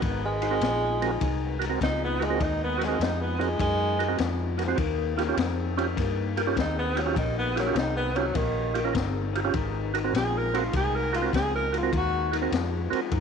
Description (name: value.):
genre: electric blues shuffle.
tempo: 101 BPM.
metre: 4/4.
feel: swing 67% on 8ths.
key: Ab mixolydian.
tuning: A4 = 439 Hz.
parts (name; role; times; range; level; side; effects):
mellow tenor saxophone; melody; 0.0-12.3 s; Eb3 to Bb4; -29 LUFS; right 2 dB; slapback echo.
electric guitar through a small old amp; riff; 0.0-13.2 s; Ab2 to C4; -32 LUFS; left 12 dB; wide subtle chorus.
vintage muted fingered electric bass; bass; 0.0-13.2 s; G1 to G2; -31 LUFS; right 1 dB; transformer saturation.
crunchy breakbeat drum kit; drums; 0.0-13.2 s; kick drum, ride cymbal, snare drum; -31 LUFS; left 4 dB; none.
percussive tonewheel organ; accompaniment; 0.4-13.0 s; C4 to C5; -31 LUFS; right 11 dB; slow rotary speaker, overdrive, chorus vibrato.
room: light reverb.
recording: 1960s-style stereo with parts hard left and right.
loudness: -24 LUFS.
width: side -6 dB against mid.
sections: 0.0-13.2 A section.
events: tenor saxophone solo 0.0-13.2.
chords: 0.0 Ab7; 4.8 Eb7; 9.5 Ab7.